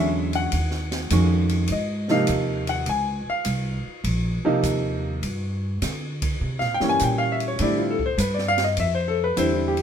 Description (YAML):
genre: jazz piano trio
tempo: 102 BPM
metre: 4/4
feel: swing 68% on 8ths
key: unclear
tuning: A4 = 440 Hz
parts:
  - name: clear grand piano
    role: melody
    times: 0.0-9.8 s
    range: C3 to Ab5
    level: -23 LUFS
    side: equal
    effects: none
  - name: upright bass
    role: bass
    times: 0.0-9.8 s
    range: Bb1 to D3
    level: -25 LUFS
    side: equal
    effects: none
  - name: open jazz drum kit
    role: drums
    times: 0.3-9.8 s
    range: hi-hat, kick drum, ride cymbal, snare drum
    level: -31 LUFS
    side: equal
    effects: none
room: moderate studio reverb, RT60 0.8 s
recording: minimal, uncompressed stereo recording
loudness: -21 LUFS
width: side -8 dB against mid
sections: 0.0-2.9 A section; 2.9-9.8 A section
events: grand piano solo 0.0-9.8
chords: 0.0 E13; 0.5 Ebm7; 1.7 Ab69; 2.9 Db69; 5.2 G5; 6.4 C7b9; 7.6 Fmaj9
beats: | 0.52 1.11 1.70 2.28 | 2.87 3.46 4.05 4.64 | 5.23 5.83 6.42 7.01 | 7.60 8.19 8.78 9.37